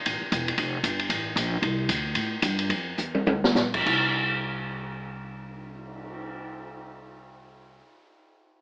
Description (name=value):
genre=modal jazz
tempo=194-229 BPM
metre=4/4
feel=swing 60% on 8ths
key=unclear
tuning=A4 = 440 Hz
part: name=upright bass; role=bass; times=0.1-7.8 s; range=E1 to A2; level=-31 LUFS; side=equal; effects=none
part: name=open jazz drum kit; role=drums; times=0.1-6.3 s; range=crash cymbal, cymbal swell, hi-hat, kick drum, ride cymbal, snare drum, toms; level=-26 LUFS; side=equal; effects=cassette tape
room=light reverb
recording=home recording on cassette, AM radio sound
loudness=-23 LUFS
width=side -29 dB against mid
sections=0.0-1.6 A section; 1.6-3.9 B section; 3.9-6.3 C section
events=slowing down 1.6-3.9; drum fill 3.0-3.6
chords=none